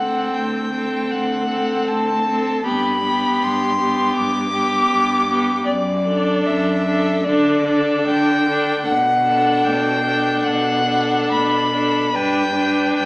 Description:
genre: classical, slow romantic movement for string quartet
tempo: 66-82 BPM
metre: 4/4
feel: rubato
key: G major, D major from 5.7 s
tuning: A4 = 441 Hz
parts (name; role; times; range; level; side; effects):
- rich violin; melody; 0.0-13.1 s; D5 to D6; -19 LUFS; left 1 dB; none
- rich violin; second line; 0.0-13.1 s; G4 to B4; -24 LUFS; left 1 dB; none
- rich viola; accompaniment; 0.0-13.1 s; B3 to D4; -22 LUFS; equal; none
- rich cello; bass; 0.0-13.1 s; D2 to D3; -24 LUFS; right 1 dB; none
room: wet recital hall reverb, RT60 1.5 s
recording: recorded in a church or concert hall, small speaker sound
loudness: -16 LUFS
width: side -23 dB against mid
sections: 0.0-13.1 A section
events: none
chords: 0.0 D7; 2.7 G; 5.7 D/F#; 7.3 D5; 8.9 Bm7; 12.2 G

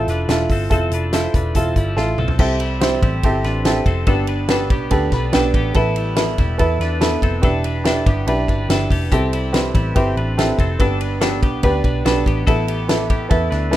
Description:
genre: jangly indie pop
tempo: 143 BPM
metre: 4/4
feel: straight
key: unclear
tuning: A4 = 436 Hz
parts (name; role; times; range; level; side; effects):
- clear upright piano; accompaniment; 0.0-13.8 s; B3 to B5; -20 LUFS; right 1 dB; none
- twelve-string electric guitar; arpeggios; 0.0-13.8 s; G3 to C5; -26 LUFS; left 3 dB; phaser, digital delay
- vintage muted picked electric bass; bass; 0.0-13.8 s; E1 to E2; -21 LUFS; equal; none
- loose indie drum kit; drums; 0.1-13.8 s; crash cymbal, hi-hat, kick drum, ride cymbal, snare drum, toms; -19 LUFS; equal; none
room: light reverb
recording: rough home demo mix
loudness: -15 LUFS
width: side -14 dB against mid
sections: 0.0-2.4 A section; 2.4-13.8 B section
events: drum fill 2.0-2.4; upright piano fill 4.9-5.8, 11.8-12.5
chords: 0.0 Fmaj7; 2.4 C6; 4.1 G; 5.8 Asus2; 7.4 Em7; 9.1 C6; 10.8 G; 12.5 Asus2

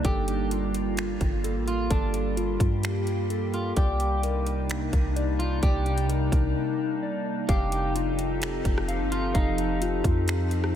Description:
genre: hip hop, atmospheric cloud-rap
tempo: 129 BPM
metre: 4/4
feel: half-time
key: unclear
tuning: A4 = 440 Hz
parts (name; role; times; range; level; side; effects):
- glassy FM pad; sustained chords; 0.0-10.8 s; C3 to A4; -29 LUFS; equal; ensemble chorus, built-in reverb, sidechain pumping
- mellow electric guitar; arpeggios; 0.0-10.8 s; F4 to F5; -34 LUFS; left 3 dB; analog chorus, analog delay
- soft 808-style bass; bass; 0.0-10.8 s; F1 to G2; -28 LUFS; equal; none
- trap drum kit; drums; 0.0-10.7 s; finger snaps, hi-hat, kick drum, rim click; -27 LUFS; equal; none
- electric guitar at the edge of break-up; melody; 0.1-9.8 s; D4 to G4; -34 LUFS; right 1 dB; lush chorus, analog delay
room: moderate huge ambient reverb, RT60 4.6 s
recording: dreamy mix soaked in reverb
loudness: -24 LUFS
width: side -10 dB against mid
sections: 0.0-7.5 A section; 7.5-10.8 B section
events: break 6.6-7.5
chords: 0.0 Gm9; 3.8 Cm9; 7.5 F9

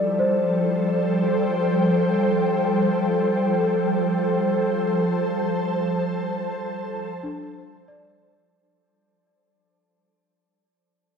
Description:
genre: ambient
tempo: free time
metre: none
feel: none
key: unclear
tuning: A4 = 441 Hz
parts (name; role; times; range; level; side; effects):
- ethereal airy pad; sustained chords; 0.0-8.6 s; F3 to A5; -21 LUFS; equal; ensemble chorus, built-in reverb, shimmer reverb
- celesta; arpeggios; 0.0-9.5 s; D4 to D5; -28 LUFS; left 2 dB; ping-pong delay, shimmer reverb
room: wet cathedral reverb, RT60 6.5 s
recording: in a vast, echoing space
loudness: -20 LUFS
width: side -6 dB against mid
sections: 0.0-8.6 A section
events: fade-out 4.9-8.6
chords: 0.0 G9sus4

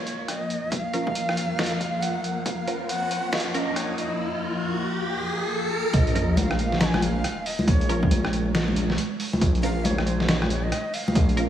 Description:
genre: deep dubstep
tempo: 138 BPM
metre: 4/4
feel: swing 62% on 16ths, half-time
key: Bb minor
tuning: A4 = 440 Hz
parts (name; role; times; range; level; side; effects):
- breathy bright shakuhachi; melody; 0.0-11.5 s; C5 to Bb5; -31 LUFS; right 1 dB; dub echo
- granular cloud pad; sustained chords; 0.0-6.0 s; F3 to Bb3; -32 LUFS; left 1 dB; built-in reverb, wide subtle chorus
- riser and sub drop; sound effects; 1.7-7.7 s; none; -30 LUFS; equal; none
- trip hop sampler-style drum kit; drums; 0.1-11.5 s; hi-hat, rim click, snare drum; -29 LUFS; equal; high-pass filter on toms, high-pass filter on hats, high-pass filter on snare
- electronic kick drum; drums; 0.7-2.6, 5.9-11.3 s; none; -23 LUFS; equal; overdrive, high-pass filter on kick
- filtered dub chord stab; stabs; 0.9-11.5 s; F3 to Bb4; -33 LUFS; right 1 dB; phaser, dub echo
- dark detuned saw bass; bass; 5.9-11.5 s; Bb1; -25 LUFS; equal; none
- congas; percussion; 6.4-11.1 s; none; -28 LUFS; left 1 dB; dub echo
room: moderate lush hall reverb, RT60 2.4 s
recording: dreamy mix soaked in reverb, vinyl crackle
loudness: -22 LUFS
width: side -10 dB against mid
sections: 0.0-5.9 A section; 5.9-11.5 B section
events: build-up 0.0-5.9; filter sweep on ambient pad 0.0-5.9; riser 1.7-5.9; drop 5.9-11.5; impact 5.9-7.7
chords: 0.0 Bbm

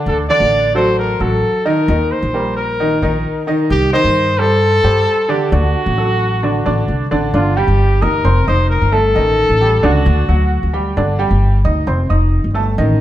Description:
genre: latin, Cuban son and guajira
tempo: 132 BPM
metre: 4/4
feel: straight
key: unclear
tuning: A4 = 440 Hz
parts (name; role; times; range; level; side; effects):
- bright baby grand piano; arpeggios; 0.0-13.0 s; D3 to Eb6; -18 LUFS; right 1 dB; none
- warm trumpet; melody; 0.1-10.7 s; F4 to D5; -16 LUFS; equal; tape echo
- upright bass; bass; 0.1-13.0 s; F1 to G2; -16 LUFS; equal; none
room: wet studio reverb, RT60 0.8 s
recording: heard from further back in the room, faint mains hum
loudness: -12 LUFS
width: side -13 dB against mid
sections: 0.0-7.3 A section; 7.3-13.0 B section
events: none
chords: 0.0 D; 1.9 Eb; 3.7 Cm; 5.5 D; 7.3 G5; 8.2 F5; 9.2 A7#11; 10.1 D; 11.0 G5; 11.9 F5

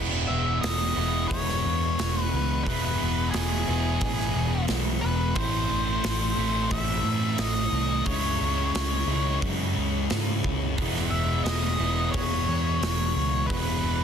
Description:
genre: rock, shoegaze and dream pop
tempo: 88 BPM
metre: 4/4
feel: straight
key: E major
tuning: A4 = 440 Hz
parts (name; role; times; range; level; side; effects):
- raw garage guitar; riff; 0.0-14.0 s; E2 to E4; -32 LUFS; right 13 dB; overdrive, reverse reverb
- thick fuzz guitar; riff; 0.0-14.0 s; E2 to C#4; -30 LUFS; left 10 dB; distortion, analog chorus
- vintage muted fingered electric bass; bass; 0.0-14.0 s; E1 to A2; -28 LUFS; equal; none
- octave-fuzz lead guitar; melody; 0.3-14.0 s; G#4 to E5; -30 LUFS; left 2 dB; distortion, slapback echo
- big rock drum kit; drums; 0.6-13.7 s; hi-hat, kick drum, snare drum; -31 LUFS; right 1 dB; none
room: light reverb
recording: dense, heavily limited modern master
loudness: -23 LUFS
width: side -8 dB against mid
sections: 0.0-14.0 A section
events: none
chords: 0.0 E; 5.4 Am; 8.1 C#m; 10.8 Emaj7

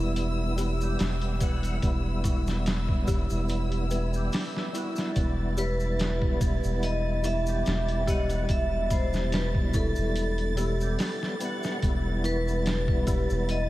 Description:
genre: trip hop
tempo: 72 BPM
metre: 4/4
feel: swing 54% on 16ths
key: E minor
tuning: A4 = 438 Hz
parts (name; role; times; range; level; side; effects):
- percussive tonewheel organ; accompaniment; 0.0-13.7 s; B2 to F#5; -33 LUFS; right 1 dB; overdrive, chorus vibrato, slow rotary speaker, tremolo, tape echo
- dark studio violin section; sustained chords; 0.0-13.7 s; E4 to A6; -38 LUFS; equal; none
- dark detuned synth bell; arpeggios; 0.0-13.7 s; E4 to B5; -37 LUFS; equal; chorus, tape echo
- soft dub sub bass; bass; 0.0-13.7 s; E1; -28 LUFS; equal; none
- boom bap sampler-style drum kit; drums; 0.2-13.7 s; hi-hat, kick drum, snare drum; -30 LUFS; equal; vintage 12-bit sampler grit, studio ambience
- maracas; percussion; 0.2-13.7 s; none; -47 LUFS; equal; none
- vibraphone with hard mallets; melody; 5.6-13.7 s; A4 to E5; -32 LUFS; equal; vintage 12-bit sampler grit, tape echo
room: light reverb, small room ambience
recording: vinyl crackle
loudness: -25 LUFS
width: side -16 dB against mid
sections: 0.0-13.7 A section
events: none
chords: 0.0 Em

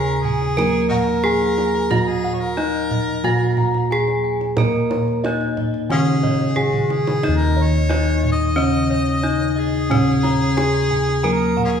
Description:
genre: Javanese gamelan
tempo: 90 BPM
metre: 4/4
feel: straight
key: Eb slendro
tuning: A4 = 439 Hz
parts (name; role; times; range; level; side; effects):
- gamelan-type bronze metallophone; melody; 0.0-11.8 s; Db4-25c to Bb4; -21 LUFS; equal; none
- warm harmonica; second line; 0.0-11.8 s; Db4 to Eb5; -26 LUFS; left 1 dB; none
- gamelan-type bronze metallophone; accompaniment; 0.0-11.8 s; Db3-25c to Bb3; -24 LUFS; right 1 dB; none
- gamelan-type bossed gongs; arpeggios; 0.0-11.8 s; Db5-25c to Bb5; -29 LUFS; left 5 dB; none
- gamelan-type bronze metallophone; arpeggios; 0.0-11.8 s; Db5-25c to Bb5; -31 LUFS; right 4 dB; none
- gamelan-type bossed gongs; bass; 0.0-11.8 s; Eb2 to Bb4; -23 LUFS; left 1 dB; none
- kendang; percussion; 0.2-11.8 s; none; -26 LUFS; right 2 dB; none
room: wet recital hall reverb, RT60 1.5 s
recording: recorded in a church or concert hall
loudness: -16 LUFS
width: side -7 dB against mid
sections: 0.0-11.8 A section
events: drum fill 6.6-7.2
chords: none

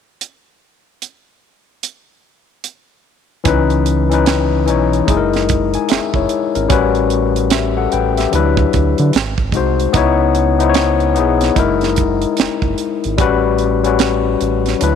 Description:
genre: R&B, neo-soul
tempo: 74 BPM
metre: 4/4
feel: swing 63% on 16ths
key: unclear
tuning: A4 = 440 Hz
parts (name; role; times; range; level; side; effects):
- tight funk drum kit; drums; 0.2-15.0 s; hi-hat, kick drum, snare drum; -18 LUFS; right 6 dB; none
- overdriven tine electric piano; accompaniment; 3.4-15.0 s; E3 to G#5; -15 LUFS; left 9 dB; none
- round analog bass; bass; 3.5-15.0 s; F#1 to D3; -18 LUFS; right 2 dB; none
room: light reverb, studio reverb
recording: 1960s-style stereo with parts hard left and right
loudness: -13 LUFS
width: side -7 dB against mid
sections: 0.2-3.5 A section; 3.5-15.0 B section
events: none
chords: 0.2 N.C.; 3.5 C#m9; 5.1 F#13; 6.7 A13; 8.3 D69; 9.1 G#7; 9.9 C#m9; 11.6 F#13; 13.2 A13

